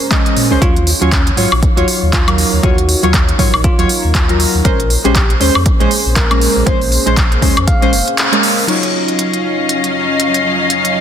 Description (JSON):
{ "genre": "deep house", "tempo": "119 BPM", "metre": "4/4", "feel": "swing 58% on 16ths", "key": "Eb minor", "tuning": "A4 = 440 Hz", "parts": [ { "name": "dark analog pad", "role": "sustained chords", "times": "0.0-11.0 s", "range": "Gb3 to Eb5", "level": "-23 LUFS", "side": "left 1 dB", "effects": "chorus, sidechain pumping" }, { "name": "warm analog keys", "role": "stabs", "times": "0.1-11.0 s", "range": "Gb3 to Eb5", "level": "-17 LUFS", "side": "right 1 dB", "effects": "chorus, sidechain pumping, low-pass filter, tape echo" }, { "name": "deep house drum kit", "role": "drums", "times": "0.1-10.9 s", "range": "crash cymbal, handclaps, hi-hat, woodblock", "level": "-16 LUFS", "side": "equal", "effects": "none" }, { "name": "electronic kick drum", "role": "drums", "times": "0.1-7.8 s", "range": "none", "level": "-14 LUFS", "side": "equal", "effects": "none" }, { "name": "sub bass with octave", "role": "bass", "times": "0.4-8.0 s", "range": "F1 to Bb2", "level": "-16 LUFS", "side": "equal", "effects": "sidechain pumping" }, { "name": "bell-like tine electric piano", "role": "melody", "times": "0.6-8.6 s", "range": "Db4 to F5", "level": "-23 LUFS", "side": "equal", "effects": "vintage 12-bit sampler grit, tape echo" }, { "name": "clear symphonic string section", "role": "texture", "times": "8.7-11.0 s", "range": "Gb3 to F5", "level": "-15 LUFS", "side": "left 3 dB", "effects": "sidechain pumping" } ], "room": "moderate lush hall reverb, RT60 1.9 s", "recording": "dense, heavily limited modern master", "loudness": "-10 LUFS", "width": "side -9 dB against mid", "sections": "0.0-8.7 A section; 8.7-11.0 B section", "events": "kick drops out 8.2-8.7; band accent 8.2; filter sweep on synth keys 8.7-11.0", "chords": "0.0 Bbm9; 0.6 Ebm9; 4.7 Bbm9; 8.7 Ebm9", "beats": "0.11 | 0.62 1.12 1.62 2.13 | 2.63 3.14 3.64 4.15 | 4.65 5.16 5.66 6.16 | 6.67 7.17 7.68 8.18 | 8.68 9.19 9.69 10.20 | 10.70" }